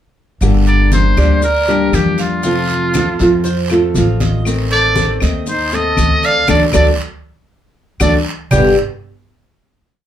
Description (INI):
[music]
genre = latin, Cuban son and guajira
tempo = 118 BPM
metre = 4/4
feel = straight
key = G minor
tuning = A4 = 441 Hz
[part]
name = nylon-string guitar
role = accompaniment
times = 0.4-8.7 s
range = G2 to G4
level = -17 LUFS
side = left 1 dB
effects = none
[part]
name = upright bass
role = bass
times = 0.4-8.8 s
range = G1 to F2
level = -16 LUFS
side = equal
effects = none
[part]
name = claves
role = percussion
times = 0.4-8.6 s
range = none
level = -28 LUFS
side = left 6 dB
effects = none
[part]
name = congas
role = percussion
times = 0.4-8.6 s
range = none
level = -20 LUFS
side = left 1 dB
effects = none
[part]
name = guiro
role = percussion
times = 0.4-8.6 s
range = none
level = -29 LUFS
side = right 4 dB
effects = none
[part]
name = maracas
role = percussion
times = 0.4-8.6 s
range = none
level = -31 LUFS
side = left 4 dB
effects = none
[part]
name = trumpet with metal mute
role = melody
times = 0.7-8.8 s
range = F4 to G5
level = -17 LUFS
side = equal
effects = none
[part]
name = Cuban tres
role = arpeggios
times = 0.7-8.8 s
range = G3 to F5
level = -19 LUFS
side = right 2 dB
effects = none
[part]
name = bright baroque flute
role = second line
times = 4.7-8.8 s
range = Eb4 to B4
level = -23 LUFS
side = left 5 dB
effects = none
[sound]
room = wet small room reverb, RT60 0.5 s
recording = heard from further back in the room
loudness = -11 LUFS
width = side -10 dB against mid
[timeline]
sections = 0.4-8.5 verse; 8.5-10.1 final chord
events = band accent 6.5-8.5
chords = 0.4 Gm; 2.4 F; 4.5 Adim; 6.5 D; 8.5 G